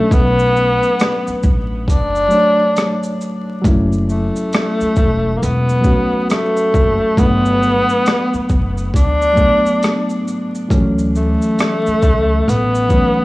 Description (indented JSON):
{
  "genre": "lo-fi hip hop",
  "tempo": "68 BPM",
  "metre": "4/4",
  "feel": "swing 61% on 16ths",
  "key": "B minor",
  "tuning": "A4 = 441 Hz",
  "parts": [
    { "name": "clear tenor saxophone", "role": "melody", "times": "0.0-13.2 s", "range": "A3 to D4", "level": "-16 LUFS", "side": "left 1 dB", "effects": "low-pass filter, tape echo" },
    { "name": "reed electric piano", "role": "accompaniment", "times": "0.0-13.2 s", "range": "E3 to C#5", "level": "-19 LUFS", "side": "equal", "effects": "cassette tape, low-pass filter" },
    { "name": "upright bass", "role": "bass", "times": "0.1-12.9 s", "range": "E1 to D2", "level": "-19 LUFS", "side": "equal", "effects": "none" },
    { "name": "boom bap sampler-style drum kit", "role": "drums", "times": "0.1-13.2 s", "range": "hi-hat, kick drum, rim click, shaker", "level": "-17 LUFS", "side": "equal", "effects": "overdrive" }
  ],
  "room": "digital ambience",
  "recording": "dry, gritty hardware recording, vinyl crackle, small room reverb",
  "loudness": "-13 LUFS",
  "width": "side -19 dB against mid",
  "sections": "0.0-13.2 A section",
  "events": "none",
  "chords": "0.0 Bm7; 3.6 F#m7; 7.2 Gmaj7; 10.7 Dmaj7"
}